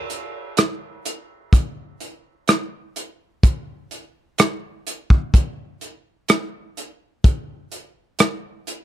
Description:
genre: pop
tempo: 63 BPM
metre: 4/4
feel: straight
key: none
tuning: none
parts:
  - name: modern studio drum kit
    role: drums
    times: 0.1-8.8 s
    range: hi-hat, kick drum, rim click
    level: -17 LUFS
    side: equal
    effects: none
room: little or no reverb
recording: none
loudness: -18 LUFS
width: side -13 dB against mid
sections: 0.0-8.8 A section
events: none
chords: none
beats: 0.58 1.53 2.48 | 3.44 4.39 5.34 6.29 | 7.24 8.20

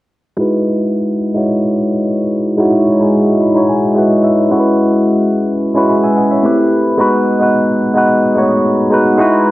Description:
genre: amapiano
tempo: 109 BPM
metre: 4/4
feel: straight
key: E major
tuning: A4 = 440 Hz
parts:
  - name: tine electric piano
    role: accompaniment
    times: 0.4-9.5 s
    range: G#3 to B5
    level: -10 LUFS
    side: equal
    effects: phaser, low-pass filter
room: moderate lush hall reverb, RT60 2.9 s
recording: dark, warm production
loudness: -10 LUFS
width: side -17 dB against mid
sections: 0.4-9.5 A section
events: filter sweep on tine electric piano 0.4-9.5; tine electric piano fill 3.1-4.8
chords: 0.4 Emaj9; 4.5 F#7sus4; 6.4 Am7; 7.0 G#m7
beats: | 0.38 0.93 1.48 2.03 | 2.58 3.13 3.68 4.23 | 4.78 5.33 5.88 6.43 | 6.99 7.54 8.09 8.64 | 9.19

